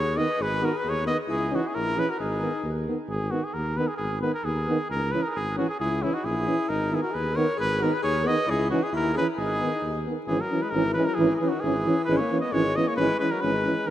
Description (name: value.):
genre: balkan folk.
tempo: 134 BPM.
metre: 2/4.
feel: straight.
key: unclear.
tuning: A4 = 440 Hz.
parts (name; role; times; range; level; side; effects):
warm trumpet; melody; 0.0-13.9 s; E4 to D#5; -28 LUFS; equal; none.
warm alto saxophone; second line; 0.0-2.8, 5.8-13.9 s; D#3 to B4; -30 LUFS; left 2 dB; none.
dark tuba; bass; 0.0-13.9 s; G#1 to D#2; -30 LUFS; equal; none.
dark euphonium; accompaniment; 0.2-13.9 s; D#3 to E3; -29 LUFS; right 3 dB; none.
warm euphonium; accompaniment; 0.2-13.9 s; B3 to C#4; -32 LUFS; left 4 dB; none.
room: wet lush hall reverb, RT60 2.6 s.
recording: rough home demo mix.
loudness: -23 LUFS.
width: side -12 dB against mid.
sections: 0.0-3.1 A section; 3.1-10.3 A section; 10.3-13.9 B section.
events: none.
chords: 0.0 G#m; 1.3 C#m; 2.2 G#m; 4.9 C#m; 6.7 G#m; 8.5 C#m; 9.4 G#m; 10.3 C#m/G#.